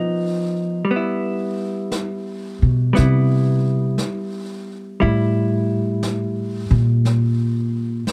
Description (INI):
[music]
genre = jazz ballad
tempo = 58 BPM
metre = 4/4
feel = swing 67% on 8ths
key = unclear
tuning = A4 = 441 Hz
[part]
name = hollow-body jazz guitar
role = accompaniment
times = 0.0-8.1 s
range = F3 to E4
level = -25 LUFS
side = equal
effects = none
[part]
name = brushed snare drum and snare drum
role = drums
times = 0.9-8.1 s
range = none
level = -34 LUFS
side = equal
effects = none
[part]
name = upright bass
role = bass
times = 2.6-8.0 s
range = A2 to C3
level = -20 LUFS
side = equal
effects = none
[sound]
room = light reverb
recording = dark, warm production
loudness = -20 LUFS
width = mono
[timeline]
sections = 0.0-8.1 A section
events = upright bass solo 0.0-8.1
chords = 0.0 B; 0.9 Cmaj7; 5.0 Gm69/A